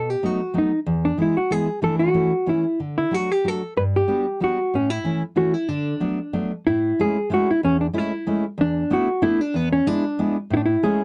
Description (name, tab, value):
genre	musette waltz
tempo	187 BPM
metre	3/4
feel	straight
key	D major, A major from 6.7 s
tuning	A4 = 440 Hz
part	hollow-body jazz guitar	melody	0.0-11.0 s	B3 to B4	-23 LUFS	equal	none
part	fingerpicked steel-string acoustic guitar	accompaniment	0.0-11.0 s	E2 to F#4	-26 LUFS	equal	none
room	light reverb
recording	dark, warm production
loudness	-22 LUFS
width	mono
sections	0.0-6.7 A section; 6.7-11.0 B section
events	none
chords	0.0 B7; 0.9 E; 1.8 Asus4; 2.1 A; 2.8 D; 3.8 Gmaj7; 4.7 A; 5.7 D6; 6.7 Amaj7; 8.6 E7sus4; 9.5 E7; 10.5 Amaj7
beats	0.23 0.55 | 0.87 1.18 1.50 | 1.82 2.14 2.47 | 2.80 3.12 3.45 | 3.77 4.09 4.41 | 4.73 5.05 5.37 | 5.69 6.02 6.35 | 6.67 7.00 7.32 | 7.64 7.96 8.28 | 8.60 8.91 9.23 | 9.55 9.87 10.19 | 10.52 10.84